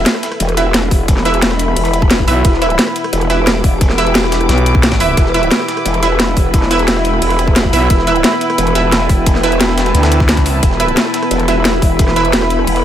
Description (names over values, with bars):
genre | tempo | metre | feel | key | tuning
dark technical drum and bass | 176 BPM | 4/4 | straight | E minor | A4 = 442 Hz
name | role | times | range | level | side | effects
deep dark ambient pad | sustained chords | 0.2-12.8 s | B3 to G5 | -21 LUFS | left 1 dB | chorus, built-in reverb, sidechain pumping
growl bass | bass | 0.0-12.8 s | E1 | -16 LUFS | equal | chorus, overdrive
rich chamber string section | texture | 0.0-12.8 s | E4 to D6 | -19 LUFS | right 1 dB | sidechain pumping
breakbeat sampler-style drum kit | drums | 0.1-12.8 s | hi-hat, ride cymbal, snare drum | -25 LUFS | equal | high-pass filter on cymbals, high-pass filter on snare, high-pass filter on hats
drum and bass drum kit | drums | 0.1-12.8 s | hi-hat, rim click, snare drum | -16 LUFS | equal | overdrive
orchestra-hit-like synth stab | stabs | 0.6-12.2 s | E4 to E5 | -19 LUFS | right 4 dB | built-in reverb, digital delay
electronic kick drum | drums | 0.9-12.1 s | none | -13 LUFS | equal | none
growling FM bass | bass | 2.3-2.4, 4.5-5.2, 7.7-7.9, 9.9-10.6 s | B1 to D2 | -13 LUFS | equal | none
room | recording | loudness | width
light reverb | none | -10 LUFS | side -10 dB against mid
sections
0.0-12.8 A section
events
none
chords
0.0 E5